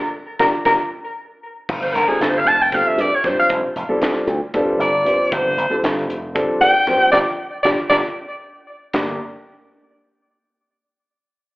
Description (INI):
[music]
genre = electric jazz fusion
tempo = 232 BPM (eighths)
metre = 7/8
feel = straight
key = unclear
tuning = A4 = 436 Hz
[part]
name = mellow soprano saxophone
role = melody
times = 0.4-8.0 s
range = Ab4 to A5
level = -17 LUFS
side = equal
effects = slapback echo, tape echo
[part]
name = dark concert grand piano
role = accompaniment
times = 0.4-9.2 s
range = G3 to C5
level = -22 LUFS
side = equal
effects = slapback echo
[part]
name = slap bass with an envelope filter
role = bass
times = 0.4-9.2 s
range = F1 to G2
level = -24 LUFS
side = equal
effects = none
[part]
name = crisp fusion drum kit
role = drums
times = 0.4-9.1 s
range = crash cymbal, hi-hat, kick drum, ride cymbal, snare drum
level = -25 LUFS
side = equal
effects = none
[sound]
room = light reverb, small room ambience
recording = live gig heard through the venue's PA, club reverb, telephone sound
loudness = -15 LUFS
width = side -21 dB against mid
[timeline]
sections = 0.0-1.7 A section; 1.7-8.9 B section; 8.9-10.7 C section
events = band accent 0.0-1.7, 7.1-8.9; soprano saxophone solo 1.7-8.9; drum fill 7.4-8.9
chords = 0.0 G7(no3); 1.7 G9sus4; 8.9 Gm